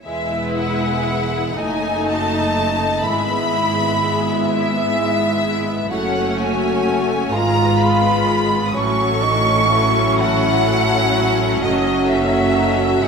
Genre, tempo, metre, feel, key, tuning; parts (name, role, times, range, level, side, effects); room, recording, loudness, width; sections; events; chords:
classical, slow romantic movement for symphony orchestra; 41 BPM (dotted quarters); 6/8; uneven beats, rubato; A4 = 441 Hz
clear symphonic violin section; melody; 0.0-13.1 s; D#5 to D#6; -24 LUFS; left 3 dB
mellow small flute group; second line; 0.0-13.1 s; D#5 to C#6; -23 LUFS; right 2 dB
rich studio cello section; bass; 0.0-13.1 s; E2 to A2; -25 LUFS; right 2 dB
warm symphonic violin section; second line; 0.1-13.1 s; G#3 to E5; -27 LUFS; left 4 dB
rich studio viola section; accompaniment; 0.1-13.1 s; F#3 to F4; -24 LUFS; right 2 dB
mellow French horn section; sustained chords; 0.1-13.1 s; Ab3 to F#4; -25 LUFS; left 4 dB
clear symphonic double bass section; bass; 0.1-13.1 s; E1 to A1; -25 LUFS; right 3 dB
mellow bassoon; accompaniment; 1.6-13.1 s; C#4 to F#4; -22 LUFS; equal
wet scoring stage reverb, RT60 2.0 s; minimal, uncompressed stereo recording; -15 LUFS; side -5 dB against mid
0.1-13.1 A section
0.1 E; 1.6 D#dim/F#; 3.0 E/G#; 5.9 F#m; 7.3 Fdim/Ab; 8.8 F#m/A; 11.6 D#m7b5/F#